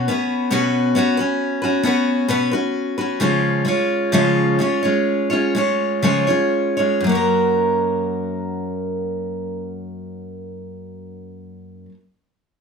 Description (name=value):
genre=folk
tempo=59-69 BPM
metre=4/4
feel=straight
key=F# major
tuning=A4 = 440 Hz
part: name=picked steel-string acoustic guitar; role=accompaniment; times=0.0-12.0 s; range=F#2 to C#5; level=-18 LUFS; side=equal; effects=none
room=moderate studio reverb, RT60 0.7 s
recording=none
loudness=-17 LUFS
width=side -5 dB against mid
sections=0.0-7.0 A section; 7.0-11.1 B section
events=slowing down 0.0-7.0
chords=0.0 Bsus2; 3.2 C#; 7.0 F#